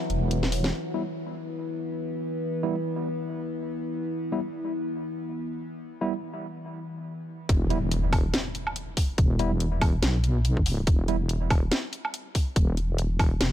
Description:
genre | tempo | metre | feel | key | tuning
deep dubstep | 142 BPM | 4/4 | swing 57% on 16ths, half-time | E minor | A4 = 435 Hz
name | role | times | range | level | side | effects
overtone-sweeping drone | sustained chords | 0.0-7.5 s | E3 to B3 | -31 LUFS | left 1 dB | chorus, built-in reverb
deep soft wobble bass | bass | 0.1-0.7, 7.5-13.5 s | E1 to B1 | -25 LUFS | equal | chorus
garage drum kit | drums | 0.1-0.7, 7.5-13.5 s | hi-hat, snare drum, woodblock | -29 LUFS | equal | none
tine electric piano | stabs | 0.9-11.2 s | G3 to E4 | -34 LUFS | right 2 dB | medium stereo tremolo, dub echo
electronic kick drum | drums | 7.5-13.3 s | none | -23 LUFS | equal | none
impact | sound effects | 7.5-9.2 s | none | -34 LUFS | equal | none
room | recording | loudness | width
digital ambience | dark, warm production | -25 LUFS | side -12 dB against mid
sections
0.7-7.5 A section; 7.5-13.5 B section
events
break 0.0-0.7, 6.6-7.5; drum fill 0.4-0.7; drop 7.5-13.5; impact 7.5-9.2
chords
0.0 N.C.; 0.7 E5

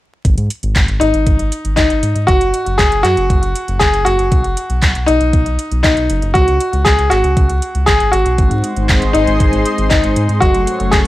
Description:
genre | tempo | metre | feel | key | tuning
italo disco | 118 BPM | 4/4 | straight | unclear | A4 = 440 Hz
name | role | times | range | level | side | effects
round analog bass | bass | 0.2-11.0 s | F#1 to G#2 | -17 LUFS | equal | none
electronic kick drum | drums | 0.2-11.0 s | none | -15 LUFS | equal | small room ambience
house drum kit | drums | 0.2-11.0 s | handclaps, hi-hat | -20 LUFS | equal | small room ambience
clear grand piano | melody | 1.0-11.0 s | D#4 to G#4 | -15 LUFS | left 1 dB | analog delay
lush unison pad | sustained chords | 8.7-11.1 s | G#4 to C#6 | -21 LUFS | equal | chorus
mellow synth brass | stabs | 8.4-11.1 s | F#3 to B#4 | -21 LUFS | left 1 dB | chorus, tremolo, vintage 12-bit sampler grit
room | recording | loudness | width
little or no reverb | dry, gritty hardware recording, vinyl crackle | -11 LUFS | side -16 dB against mid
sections
0.2-11.1 A section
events
none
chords
0.2 G#5; 2.3 F#sus2; 4.3 B; 6.4 C#5; 8.4 G#; 10.4 F#m

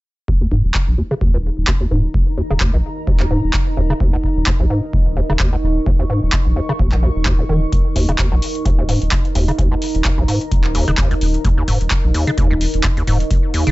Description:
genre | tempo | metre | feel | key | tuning
acid house | 129 BPM | 4/4 | swing 56% on 16ths | unclear | A4 = 440 Hz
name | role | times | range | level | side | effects
acid bass, square | riff | 0.3-13.7 s | Eb1 to Eb3 | -21 LUFS | equal | overdrive, sidechain pumping, ping-pong delay
saturated sub bass | bass | 0.3-13.7 s | Eb1 to Bb1 | -18 LUFS | equal | sidechain pumping
electronic kick drum | drums | 0.3-13.4 s | none | -18 LUFS | equal | none
deep dark ambient pad | texture | 1.5-13.7 s | Eb4 to Db6 | -25 LUFS | right 1 dB | chorus, built-in reverb, sidechain pumping
electro analog drum machine | drums | 0.7-13.7 s | handclaps, hi-hat | -22 LUFS | equal | none
room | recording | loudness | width
light reverb | nothing above 7.8 kHz | -14 LUFS | side -19 dB against mid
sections
0.3-13.7 A section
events
filter sweep on acid bass 0.3-13.7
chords
0.3 Eb5

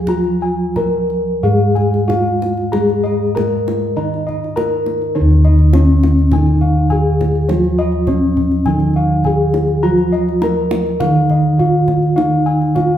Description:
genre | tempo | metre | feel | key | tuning
Javanese gamelan | 87-103 BPM | 4/4 | straight | Eb slendro | A4 = 439 Hz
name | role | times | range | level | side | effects
gamelan-type bronze metallophone | melody | 0.0-13.0 s | Db4-40c to Eb5 | -17 LUFS | left 2 dB | none
gamelan-type bronze metallophone | accompaniment | 0.0-13.0 s | Eb3 to Eb4 | -18 LUFS | right 1 dB | none
gamelan-type bossed gongs | bass | 0.0-13.0 s | Eb2 to Ab4-20c | -18 LUFS | equal | none
gamelan-type bossed gongs | arpeggios | 0.1-13.0 s | Db5-40c to Bb5+20c | -23 LUFS | left 2 dB | none
kendang | percussion | 0.1-12.9 s | none | -26 LUFS | right 2 dB | none
room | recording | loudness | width
wet large studio reverb, RT60 1.2 s | band playing live in one room | -12 LUFS | side -10 dB against mid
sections
0.0-5.2 A section; 5.2-13.0 B section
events
none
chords
none

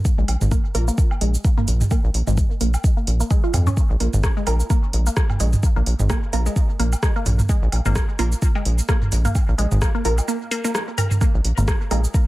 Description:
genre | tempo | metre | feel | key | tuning
minimal techno | 129 BPM | 4/4 | swing 57% on 16ths | unclear | A4 = 438 Hz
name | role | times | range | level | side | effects
booming analog drum machine | drums | 0.1-12.2 s | hi-hat, rim click, shaker | -29 LUFS | right 1 dB | overdrive, tape echo
electronic kick drum | drums | 0.1-12.2 s | none | -19 LUFS | equal | overdrive
resonant blip pluck | riff | 0.2-12.0 s | Ab3 to Bb4 | -28 LUFS | equal | phaser, sidechain pumping, dub echo
rubbery square bass | bass | 0.2-12.1 s | Ab1 to F2 | -19 LUFS | equal | sidechain pumping
electronic woodblock and toms | percussion | 0.3-12.0 s | none | -25 LUFS | right 1 dB | none
filtered dub chord stab | stabs | 0.7-0.8, 4.5-12.0 s | Bb3 to Bb4 | -29 LUFS | right 2 dB | phaser, analog chorus, tape echo
room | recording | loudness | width
digital ambience | echo-heavy mix | -17 LUFS | side -18 dB against mid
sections
0.0-12.3 A section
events
break 10.3-11.2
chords
0.0 Bb5

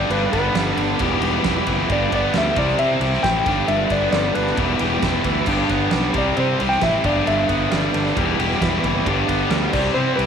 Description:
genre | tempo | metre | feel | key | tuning
classic rock | 134 BPM | 4/4 | straight | G major | A4 = 441 Hz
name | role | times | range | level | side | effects
clean lap steel guitar | melody | 0.0-10.3 s | B4 to G5 | -22 LUFS | left 1 dB | slapback echo
tonewheel organ | sustained chords | 0.0-10.3 s | G3 to C5 | -31 LUFS | equal | none
distorted electric guitar | riff | 0.0-10.3 s | E2 to G4 | -22 LUFS | left 12 dB | overdrive
overdriven electric guitar | riff | 0.0-10.3 s | E2 to G4 | -23 LUFS | right 10 dB | none
fuzz fingered electric bass | bass | 0.0-10.3 s | E1 to C3 | -25 LUFS | left 1 dB | overdrive
huge arena drum kit | drums | 0.1-10.3 s | crash cymbal, kick drum, ride cymbal, snare drum | -26 LUFS | right 3 dB | none
room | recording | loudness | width
moderate echo chamber reverb, RT60 1.4 s, small room reverb | 1960s-style stereo with parts hard left and right | -17 LUFS | side -7 dB against mid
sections
0.0-10.3 A section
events
none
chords
0.0 G; 1.0 Em; 1.9 G; 2.6 C; 3.5 G; 4.6 Em; 5.5 G; 6.2 C; 7.0 G; 8.2 Em; 9.1 G; 9.7 C

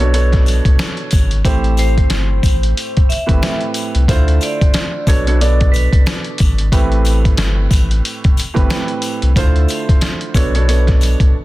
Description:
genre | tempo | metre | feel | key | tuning
hip hop, boom-bap hip-hop | 91 BPM | 4/4 | swing 58% on 16ths | A minor | A4 = 440 Hz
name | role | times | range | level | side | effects
dark grand piano | accompaniment | 0.0-11.3 s | A2 to D5 | -21 LUFS | right 4 dB | high-pass filter, low-pass filter
warm sub bass | bass | 0.0-11.3 s | G1 to D2 | -14 LUFS | equal | none
trip hop sampler-style drum kit | drums | 0.0-11.3 s | hi-hat, kick drum, snare drum | -15 LUFS | equal | none
sleigh bells | percussion | 0.1-11.2 s | none | -30 LUFS | left 5 dB | none
vibraphone with medium hard mallets | melody | 1.8-6.0 s | B4 to E5 | -24 LUFS | equal | high-pass filter, low-pass filter, ping-pong delay
room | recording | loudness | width
little or no reverb | dense, heavily limited modern master | -12 LUFS | side -17 dB against mid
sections
0.0-1.4 A section; 1.4-11.4 A section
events
none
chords
0.0 Bm7; 1.4 Am7; 4.1 Dm7; 5.1 Bm7; 6.7 Am7; 9.4 Dm7; 10.3 Bm7

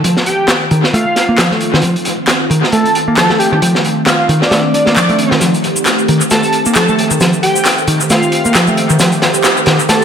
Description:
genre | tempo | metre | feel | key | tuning
breakbeat, breaks | 134 BPM | 4/4 | swing 57% on 16ths | F mixolydian | A4 = 440 Hz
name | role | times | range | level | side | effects
phased analog pad | sustained chords | 0.2-10.0 s | Eb3 to G4 | -18 LUFS | right 1 dB | phaser, chorus, sidechain pumping
modern bright picked electric bass | riff | 0.0-10.0 s | Eb3 to Bb3 | -15 LUFS | equal | tube saturation, low-pass filter, analog delay
crunchy breakbeat drum kit | drums | 0.0-10.0 s | hi-hat, kick drum, snare drum | -15 LUFS | equal | high-pass filter on kick, high-pass filter on hats, high-pass filter on snare, high-pass filter on room, analog delay
airy dreamy lead | melody | 0.3-10.0 s | D4 to A4 | -16 LUFS | equal | chorus, telephone sound, analog delay
electronic handclaps and shaker | drums | 0.5-10.0 s | none | -18 LUFS | left 1 dB | overdrive, high-pass filter on snare, high-pass filter on perc, analog delay
room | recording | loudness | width
moderate echo chamber reverb, RT60 1.2 s, small room reverb | echo-heavy mix | -9 LUFS | side -8 dB against mid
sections
0.0-10.0 A section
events
build-up 0.0-10.0; filter sweep on picked electric bass 0.0-10.0; filter sweep on analog synth pad 0.0-10.0; drum fill 5.4-10.0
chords
0.0 F7

